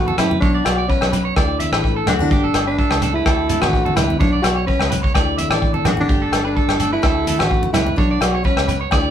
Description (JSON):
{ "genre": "highlife guitar band", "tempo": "127 BPM", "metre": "4/4", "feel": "straight", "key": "D major", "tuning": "A4 = 437 Hz", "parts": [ { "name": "growling tenor saxophone", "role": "melody", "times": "0.0-8.8 s", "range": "C#4 to F#4", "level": "-21 LUFS", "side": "equal", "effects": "none" }, { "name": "picked steel-string acoustic guitar", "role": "accompaniment", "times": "0.0-9.1 s", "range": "G2 to A4", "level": "-28 LUFS", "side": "left 5 dB", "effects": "none" }, { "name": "electric guitar at the edge of break-up", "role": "arpeggios", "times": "0.0-9.1 s", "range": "F#4 to E5", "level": "-24 LUFS", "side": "right 5 dB", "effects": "none" }, { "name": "fingered electric bass", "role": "bass", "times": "0.0-9.1 s", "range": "G1 to F#2", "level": "-23 LUFS", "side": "equal", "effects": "none" }, { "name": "congas", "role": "percussion", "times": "0.1-8.8 s", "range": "none", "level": "-24 LUFS", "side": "right 1 dB", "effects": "none" }, { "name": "warm soul drum kit", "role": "drums", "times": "0.2-9.0 s", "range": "hi-hat, kick drum, rim click", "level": "-20 LUFS", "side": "equal", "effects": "none" }, { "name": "agogo bells", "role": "percussion", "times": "0.2-9.0 s", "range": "none", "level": "-26 LUFS", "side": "left 6 dB", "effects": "none" } ], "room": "moderate studio reverb, RT60 0.6 s", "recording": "band playing live in one room", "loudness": "-15 LUFS", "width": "side -9 dB against mid", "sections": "0.0-9.1 A section", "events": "none", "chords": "0.4 Bmadd9; 1.4 Dsus2; 2.3 Gsus2; 3.3 D5; 4.2 Bmadd9; 5.1 Dsus2; 6.1 Gsus2; 7.0 D5; 8.0 Bmadd9" }